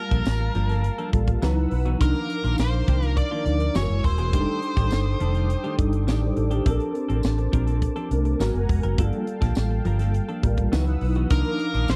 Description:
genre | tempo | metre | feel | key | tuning
polished 1980s jazz-funk pop | 103 BPM | 4/4 | straight | unclear | A4 = 440 Hz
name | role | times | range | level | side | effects
nasal lead guitar with a parked wah | melody | 0.0-5.8, 11.3-12.0 s | Bb4 to D5 | -33 LUFS | equal | overdrive
mellow tine electric piano | accompaniment | 0.0-12.0 s | F3 to Bb5 | -30 LUFS | equal | ensemble chorus
warm analog pad | sustained chords | 0.0-12.0 s | A4 to Fb6 | -42 LUFS | equal | chorus
clean electric guitar | riff | 0.1-11.9 s | Eb3 to Bb4 | -35 LUFS | equal | subtle chorus
vintage muted fingered electric bass | bass | 0.1-12.0 s | Eb1 to D2 | -26 LUFS | equal | none
tight funk drum kit | drums | 0.1-12.0 s | hi-hat, kick drum, snare drum | -26 LUFS | equal | none
tambourine | percussion | 0.3-12.0 s | none | -46 LUFS | equal | none
room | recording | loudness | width
small room ambience | dry, close 1970s-style studio recording | -23 LUFS | mono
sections
0.0-12.0 A section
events
tine electric piano fill 1.1-2.0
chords
0.0 Gm9; 1.4 Dbm11; 2.0 Cm11; 3.8 Gb9; 4.3 F13; 6.7 Bbmaj9; 8.4 Abm9; 9.0 Gm9; 10.7 Dbm11; 11.3 Cm11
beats
0.26 0.84 1.42 | 2.00 2.59 3.17 3.75 | 4.33 4.91 5.49 6.08 | 6.66 7.24 7.82 8.40 | 8.98 9.56 10.15 10.73 | 11.31 11.89

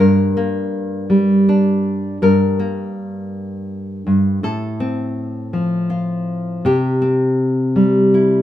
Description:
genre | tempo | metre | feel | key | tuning
folk | 54 BPM (dotted quarters) | 6/8 | straight | G minor | A4 = 440 Hz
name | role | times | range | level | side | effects
nylon-string guitar | solo | 0.0-8.4 s | G2 to Bb4 | -15 LUFS | equal | none
room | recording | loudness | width
light reverb | minimal, uncompressed stereo recording | -15 LUFS | side -12 dB against mid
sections
0.0-8.4 A section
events
none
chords
0.0 Gm; 4.4 F/A; 6.7 C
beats
1.10 | 2.21 3.32 | 4.43 5.54 | 6.66 7.76

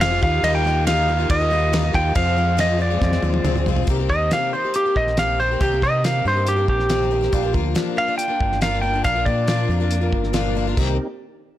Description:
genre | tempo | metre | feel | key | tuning
folk rock and heartland rock | 139 BPM | 4/4 | straight | C minor | A4 = 440 Hz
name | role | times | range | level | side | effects
pedal steel guitar | melody | 0.0-10.1 s | G4 to G5 | -21 LUFS | right 1 dB | analog delay
picked plugged-in twelve-string acoustic guitar | accompaniment | 0.0-11.0 s | F2 to G4 | -26 LUFS | left 7 dB | none
mellow tonewheel organ | sustained chords | 0.0-11.1 s | Bb3 to C5 | -32 LUFS | equal | slow rotary speaker, chorus vibrato
deep dub fingered electric bass | bass | 0.0-11.0 s | F1 to C3 | -22 LUFS | right 1 dB | none
damped 70s drum kit | drums | 0.0-10.9 s | crash cymbal, hi-hat, kick drum, ride cymbal, snare drum, toms | -24 LUFS | right 1 dB | none
room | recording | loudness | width
light reverb | blown-out, overdriven recording, overdrive | -17 LUFS | side -13 dB against mid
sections
0.0-3.9 A section; 3.9-10.8 B section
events
drum fill 3.0-3.9; pedal steel guitar solo 3.9-10.8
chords
0.2 Ebadd9; 2.2 Fm; 3.9 Cm7; 7.3 Bb; 10.8 Cm7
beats
0.01 | 0.44 0.87 1.30 1.73 | 2.16 2.59 3.02 3.45 | 3.88 4.31 4.74 5.17 | 5.60 6.04 6.47 6.90 | 7.33 7.76 8.19 8.62 | 9.05 9.48 9.91 10.35 | 10.78

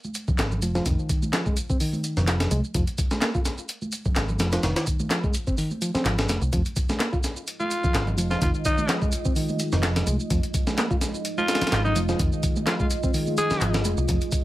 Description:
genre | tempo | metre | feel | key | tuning
breakbeat, breaks | 127 BPM | 4/4 | swing 55% on 16ths | F minor | A4 = 440 Hz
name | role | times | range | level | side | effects
electronic shaker and handclaps | drums | 0.0-14.4 s | none | -32 LUFS | right 1 dB | none
congas | percussion | 0.0-14.0 s | none | -34 LUFS | right 2 dB | none
breakbeat sampler-style drum kit | drums | 0.1-14.4 s | hi-hat, kick drum, snare drum | -25 LUFS | equal | none
hollow-body short-scale picked electric bass | bass | 0.3-14.2 s | F1 to C2 | -25 LUFS | equal | none
reed electric piano | riff | 0.6-14.2 s | Eb3 to F4 | -29 LUFS | equal | low-pass filter, ping-pong delay
deep dark ambient pad | sustained chords | 7.7-14.4 s | Ab3 to Eb5 | -32 LUFS | right 1 dB | chorus, built-in reverb, sidechain pumping
growling alto saxophone | melody | 7.6-13.7 s | Eb4 to Ab4 | -27 LUFS | equal | small speaker sound, vintage 12-bit sampler grit, ping-pong delay
room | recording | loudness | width
light reverb | vinyl crackle | -22 LUFS | side -16 dB against mid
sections
0.0-14.4 A section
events
none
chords
0.0 Fm7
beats
0.38 | 0.86 1.33 1.80 2.27 | 2.75 3.22 3.69 4.16 | 4.63 5.11 5.58 6.05 | 6.53 7.00 7.47 7.94 | 8.41 8.89 9.36 9.83 | 10.30 10.78 11.25 11.72 | 12.20 12.67 13.14 13.61 | 14.08

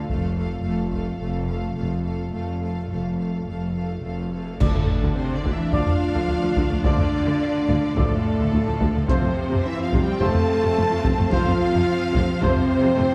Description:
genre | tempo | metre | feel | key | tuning
cinematic, epic orchestral film score | 107 BPM | 4/4 | straight | D minor | A4 = 442 Hz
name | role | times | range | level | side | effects
clear symphonic violin section | melody | 0.0-13.1 s | A4 to A5 | -38 LUFS | equal | none
clear symphonic violin section | second line | 0.0-13.1 s | A4 to A5 | -36 LUFS | equal | none
rich symphonic viola section | accompaniment | 0.0-13.1 s | C3 to D4 | -32 LUFS | equal | none
mellow French horn section | sustained chords | 0.0-13.1 s | A3 to A4 | -29 LUFS | equal | none
rich symphonic cello section | bass | 0.0-13.1 s | F2 to A3 | -31 LUFS | equal | none
rich symphonic double bass section | bass | 0.0-13.1 s | F1 to F2 | -30 LUFS | equal | none
taiko ensemble | drums | 0.1-1.2, 4.6-12.9 s | none | -28 LUFS | equal | none
cymbal swell, clash cymbals and concert bass drum | percussion | 2.3-5.7 s | none | -31 LUFS | equal | none
bright trombone section | sustained chords | 4.6-12.6 s | F3 to A3 | -40 LUFS | equal | none
rich symphonic string section | sustained chords | 4.6-13.1 s | A3 to F5 | -36 LUFS | equal | none
warm trumpet | stabs | 4.6-12.6 s | C5 to D5 | -34 LUFS | equal | none
dark tuba | bass | 4.6-13.0 s | F1 to D2 | -33 LUFS | equal | none
timpani | percussion | 4.6-5.4 s | D3 | -35 LUFS | equal | none
room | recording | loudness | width
moderate concert hall reverb, RT60 2.1 s | dark, warm production | -22 LUFS | mono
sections
0.0-4.6 A section; 4.6-13.1 B section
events
band accent 4.6-5.2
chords
0.1 F; 4.6 Dm; 9.1 F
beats
| 0.10 0.65 1.21 1.76 | 2.33 2.90 3.47 4.04 | 4.61 5.17 5.74 6.30 | 6.86 7.41 7.97 8.53 | 9.09 9.65 10.21 10.76 | 11.32 11.87 12.43 12.98

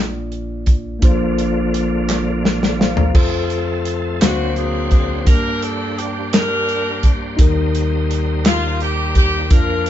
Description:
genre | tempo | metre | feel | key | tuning
slow gospel | 57 BPM (dotted quarters) | 6/8 | straight | Bb major | A4 = 437 Hz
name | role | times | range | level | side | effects
mellow tine electric piano | accompaniment | 0.0-9.9 s | Bb1 to Bb5 | -20 LUFS | left 1 dB | none
warm soul drum kit | drums | 0.3-9.9 s | crash cymbal, hi-hat, kick drum, snare drum, toms | -15 LUFS | equal | none
bright tonewheel organ | sustained chords | 1.0-9.9 s | Bb2 to C5 | -24 LUFS | right 1 dB | slow rotary speaker, overdrive, chorus vibrato
group handclap | percussion | 2.1-8.8 s | none | -27 LUFS | right 2 dB | none
edgy saxophone section | melody | 4.2-9.9 s | A#3 to C5 | -21 LUFS | equal | none
room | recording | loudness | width
moderate studio reverb, RT60 0.5 s | band playing live in one room, nothing above 7.6 kHz | -15 LUFS | side -11 dB against mid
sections
0.0-3.1 A section; 3.1-9.9 B section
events
tonewheel organ solo 0.0-3.1; drum fill 2.1-3.1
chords
0.0 Bb; 3.1 F; 4.2 D7alt; 5.3 Gm; 7.4 Eb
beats
| 1.02 2.09 | 3.15 4.21 | 5.27 6.33 | 7.39 8.45 | 9.51

